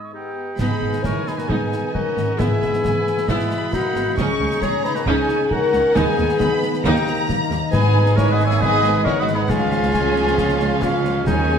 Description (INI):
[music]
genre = cinematic, heroic adventure film score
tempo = 135 BPM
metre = 4/4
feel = straight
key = G# minor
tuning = A4 = 445 Hz
[part]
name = clear oboe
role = second line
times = 0.0-11.6 s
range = B3 to D#5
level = -28 LUFS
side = right 2 dB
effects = none
[part]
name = silver concert flute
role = second line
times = 0.0-11.6 s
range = E5 to E6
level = -30 LUFS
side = right 1 dB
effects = none
[part]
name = concert harp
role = arpeggios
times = 0.0-11.6 s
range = G#2 to B5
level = -29 LUFS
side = left 7 dB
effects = none
[part]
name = warm symphonic violin section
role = second line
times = 0.1-11.6 s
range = G#3 to G#4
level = -30 LUFS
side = left 2 dB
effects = none
[part]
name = dark French horn section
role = sustained chords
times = 0.1-11.6 s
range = E4 to E5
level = -22 LUFS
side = left 2 dB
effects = none
[part]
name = warm symphonic violin section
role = melody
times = 0.6-11.6 s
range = D#5 to C#6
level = -27 LUFS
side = left 3 dB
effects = none
[part]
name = warm symphonic viola section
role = accompaniment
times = 0.6-11.6 s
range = D#3 to E#4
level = -28 LUFS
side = right 2 dB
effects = none
[part]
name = mellow trombone section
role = sustained chords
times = 0.6-11.6 s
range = B2 to C#4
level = -30 LUFS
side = right 5 dB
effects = none
[part]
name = rich symphonic cello section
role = bass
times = 0.6-11.6 s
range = C#2 to G#2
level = -27 LUFS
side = right 2 dB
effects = none
[part]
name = warm symphonic double bass section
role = bass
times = 0.6-11.6 s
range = G#1 to D#2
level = -25 LUFS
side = right 3 dB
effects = none
[part]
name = concert snare drum, clash cymbals and concert bass drum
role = drums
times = 0.6-11.4 s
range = none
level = -27 LUFS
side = right 1 dB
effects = none
[part]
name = timpani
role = percussion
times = 6.0-8.4, 11.3-11.6 s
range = G#2 to D#3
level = -25 LUFS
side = equal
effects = none
[sound]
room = wet scoring stage reverb, RT60 1.6 s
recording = none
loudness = -17 LUFS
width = side -7 dB against mid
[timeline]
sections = 0.6-11.6 A section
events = none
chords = 0.0 G#m; 2.4 E/G#; 4.2 C#sus2; 6.0 G#m/D#; 6.8 D#; 7.7 G#m; 9.5 C#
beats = 0.13 | 0.59 1.05 1.50 1.94 | 2.39 2.84 3.28 3.73 | 4.18 4.63 5.07 5.51 | 5.96 6.41 6.85 7.29 | 7.73 8.17 8.62 9.06 | 9.50 9.94 10.38 10.83 | 11.27